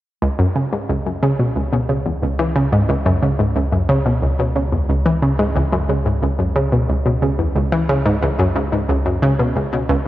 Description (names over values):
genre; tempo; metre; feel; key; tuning
ambient, sequencer-driven space music; 90 BPM; 4/4; straight; C# minor; A4 = 439 Hz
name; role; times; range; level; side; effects
analog pluck; riff; 0.2-10.1 s; C#2 to E3; -16 LUFS; equal; chorus, ping-pong delay
warm sub bass; bass; 0.2-10.1 s; C#2; -23 LUFS; equal; none
room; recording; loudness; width
moderate plate reverb, RT60 3.4 s; worn, warbling old tape, cassette tape, warbly pitch drift; -16 LUFS; side -14 dB against mid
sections
0.2-10.1 A section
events
none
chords
none